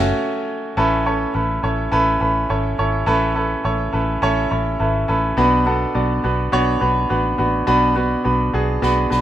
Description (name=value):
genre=piano-driven pop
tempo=104 BPM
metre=4/4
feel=straight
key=unclear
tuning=A4 = 444 Hz
part: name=clear concert grand piano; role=accompaniment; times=0.0-9.2 s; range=A2 to A5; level=-18 LUFS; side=right 1 dB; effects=none
part: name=vintage muted fingered electric bass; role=bass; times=0.0-9.2 s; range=F#1 to B1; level=-22 LUFS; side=left 1 dB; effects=none
part: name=snare drum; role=drums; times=8.8-9.2 s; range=none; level=-30 LUFS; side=left 3 dB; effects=none
room=wet small room reverb, RT60 0.6 s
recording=rough home demo mix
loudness=-16 LUFS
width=side -12 dB against mid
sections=0.8-9.2 A section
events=band accent 0.0-0.8; grand piano fill 4.2-5.4; drum fill 8.8-9.2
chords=0.0 F#m; 0.8 Aadd9; 5.4 Bm